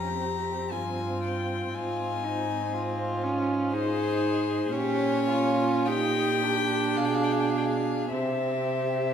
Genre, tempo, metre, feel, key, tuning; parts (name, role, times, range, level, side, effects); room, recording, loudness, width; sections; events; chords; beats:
classical, slow romantic movement for string quartet; 50-62 BPM; 3/4; rubato; F minor; A4 = 440 Hz
rich violin; melody; 0.0-9.1 s; C5 to Bb5; -31 LUFS; left 6 dB
dark violin; second line; 0.0-9.1 s; Eb4 to G#4; -31 LUFS; left 1 dB
warm viola; accompaniment; 0.0-9.1 s; C4 to Eb4; -30 LUFS; right 3 dB
warm cello; bass; 0.0-9.1 s; F2 to C3; -32 LUFS; right 4 dB
wet recital hall reverb, RT60 1.6 s; recorded in a church or concert hall; -25 LUFS; side -8 dB against mid
0.0-9.1 A section
0.0 Fm; 1.7 Fm/Ab; 4.7 Gdim/Bb; 7.0 Bdim7; 8.1 C
0.71 | 1.74 2.72 3.72 | 4.72 5.87 6.98 | 8.12